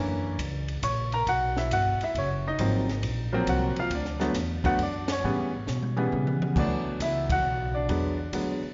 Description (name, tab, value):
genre	jazz piano trio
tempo	136 BPM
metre	3/4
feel	swing 67% on 8ths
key	D major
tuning	A4 = 440 Hz
part	clear baby grand piano	melody	0.0-8.6 s	C#3 to C#6	-30 LUFS	equal	none
part	upright bass	bass	0.0-8.7 s	F#1 to C#3	-33 LUFS	equal	none
part	compact cocktail drum kit	drums	0.4-8.5 s	crash cymbal, hi-hat, kick drum, ride cymbal, snare drum, toms	-37 LUFS	equal	none
room	moderate concert hall reverb, RT60 1.9 s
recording	recorded in a church or concert hall, nothing above 7.5 kHz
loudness	-27 LUFS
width	mono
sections	0.0-6.6 A section; 6.6-8.7 B section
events	band accent 5.0, 7.2; drum fill 5.7-6.6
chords	0.0 F#7b13; 1.3 B5; 2.6 G#13; 3.9 Dadd9; 5.2 A9; 6.6 D6; 7.9 E9